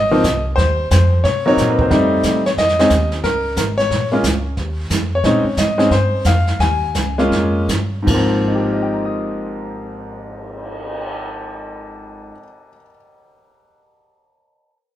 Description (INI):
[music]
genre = jazz piano trio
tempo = 153-180 BPM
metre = 4/4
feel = swing 64% on 8ths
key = Ab major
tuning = A4 = 440 Hz
[part]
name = clear grand piano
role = melody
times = 0.0-13.0 s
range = Ab2 to Eb6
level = -17 LUFS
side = left 1 dB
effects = none
[part]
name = upright bass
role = bass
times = 0.0-12.3 s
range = Ab1 to C3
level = -20 LUFS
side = equal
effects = none
[part]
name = jazz brush drum kit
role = drums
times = 0.2-11.1 s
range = brushed snare drum, crash cymbal, cymbal swell, hi-hat, kick drum, snare drum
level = -23 LUFS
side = right 2 dB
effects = none
[sound]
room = moderate large studio reverb, RT60 1.4 s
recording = band playing live in one room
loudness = -14 LUFS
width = side -12 dB against mid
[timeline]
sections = 0.0-2.6 A section; 2.6-8.1 B section; 8.1-11.2 C section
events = slowing down 5.2-8.1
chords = 0.0 Ab6; 1.2 Cm7b5; 1.9 F7; 2.6 Bbm11; 3.9 Eb7sus2; 5.2 Bbm11; 6.6 Eb9sus4; 8.1 Ab69